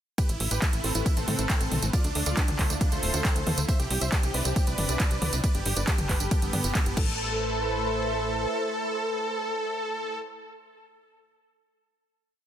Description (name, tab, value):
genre	uplifting trance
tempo	137 BPM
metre	4/4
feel	straight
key	A minor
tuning	A4 = 441 Hz
part	dense compressed supersaw	melody	0.2-10.2 s	B3 to E5	-31 LUFS	equal	cassette tape, sidechain pumping, tape echo
part	lush unison pad	sustained chords	0.5-10.2 s	C3 to C5	-35 LUFS	right 1 dB	chorus, phaser, sidechain pumping
part	big-room dance drum kit	drums	0.2-7.1 s	crash cymbal, handclaps, hi-hat, ride cymbal, tambourine, toms	-30 LUFS	right 1 dB	none
part	electronic kick drum	drums	0.2-7.1 s	none	-25 LUFS	equal	overdrive
part	tight sequencer bass	bass	0.3-8.5 s	D1 to A2	-30 LUFS	equal	sidechain pumping
room	little or no reverb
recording	dense, heavily limited modern master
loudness	-24 LUFS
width	side -10 dB against mid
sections	0.2-7.2 drop; 7.2-10.7 final hit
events	drop 0.2-7.2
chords	0.2 Amadd9; 1.9 Dmadd9; 3.7 Cadd9; 5.4 Gadd9; 7.0 Amadd9